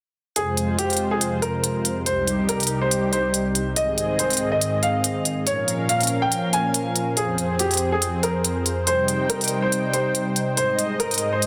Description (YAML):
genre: heavy wobble dubstep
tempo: 141 BPM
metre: 4/4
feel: swing 54% on 16ths, half-time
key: F minor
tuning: A4 = 440 Hz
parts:
  - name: warm baby grand piano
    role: melody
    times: 0.4-11.5 s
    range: G4 to Ab5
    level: -27 LUFS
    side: equal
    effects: vintage 12-bit sampler grit, delay
  - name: lush unison pad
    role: sustained chords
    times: 0.4-11.5 s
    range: C2 to G5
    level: -26 LUFS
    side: equal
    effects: chorus
  - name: electronic hi-hat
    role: drums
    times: 0.4-11.5 s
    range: none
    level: -25 LUFS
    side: equal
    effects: small room ambience
room: moderate plate reverb, RT60 1.4 s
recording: dense, heavily limited modern master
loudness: -22 LUFS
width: mono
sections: 0.4-11.5 A section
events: none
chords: 0.4 Fm; 2.1 Cm; 3.8 Ab; 5.5 Bbm; 7.2 Fm; 8.9 Cm; 10.6 Ab